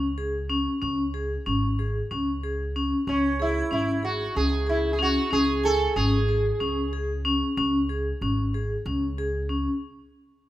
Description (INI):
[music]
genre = contemporary instrumental, contemporary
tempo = 186 BPM (eighths)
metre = 7/8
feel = straight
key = C# minor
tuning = A4 = 441 Hz
[part]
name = vibraphone with hard mallets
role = arpeggios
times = 0.0-9.7 s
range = C#4 to G#5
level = -26 LUFS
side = left 1 dB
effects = none
[part]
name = upright bass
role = bass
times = 0.0-9.7 s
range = G#1 to C#2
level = -29 LUFS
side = equal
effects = none
[part]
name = sitar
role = melody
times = 3.1-7.2 s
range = C#4 to A4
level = -26 LUFS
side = right 2 dB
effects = none
[sound]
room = light reverb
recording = none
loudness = -23 LUFS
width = side -14 dB against mid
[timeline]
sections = 0.0-10.5 A section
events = stop 9.8-10.5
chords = 0.0 C#5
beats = 0.17 0.49 | 0.82 1.14 1.46 1.78 2.10 2.43 2.75 | 3.07 3.39 3.71 4.04 4.36 4.68 5.00 | 5.32 5.64 5.97 6.29 6.61 6.93 7.25 | 7.57 7.89 8.22 8.54 8.86 9.18 9.50